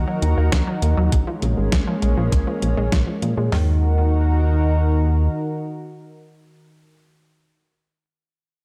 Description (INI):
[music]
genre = synthwave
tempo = 100 BPM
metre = 4/4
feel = straight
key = Eb minor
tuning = A4 = 439 Hz
[part]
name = lush unison pad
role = sustained chords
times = 0.0-6.7 s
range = Eb3 to Bb4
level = -27 LUFS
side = equal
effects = chorus, vintage 12-bit sampler grit, sidechain pumping
[part]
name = analog pluck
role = arpeggios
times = 0.0-3.8 s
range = Db3 to Bb3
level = -30 LUFS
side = equal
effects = chorus, cassette tape, tape echo
[part]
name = chorused synth bass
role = bass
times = 0.0-5.3 s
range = Ab1 to Bb2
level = -21 LUFS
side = equal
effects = sidechain pumping
[part]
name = clean 12-bit digital drum machine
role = drums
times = 0.2-3.3 s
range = hi-hat, snare drum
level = -28 LUFS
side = equal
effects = studio reverb
[part]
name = clean 12-bit digital drum machine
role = drums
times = 0.5-3.7 s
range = hi-hat, kick drum, snare drum, toms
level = -23 LUFS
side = equal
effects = studio reverb
[sound]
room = light reverb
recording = dark, warm production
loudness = -20 LUFS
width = mono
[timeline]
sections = 0.0-3.5 A section; 3.5-5.9 B section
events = none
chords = 0.0 Ebm; 1.1 Bbm7; 3.5 Ebm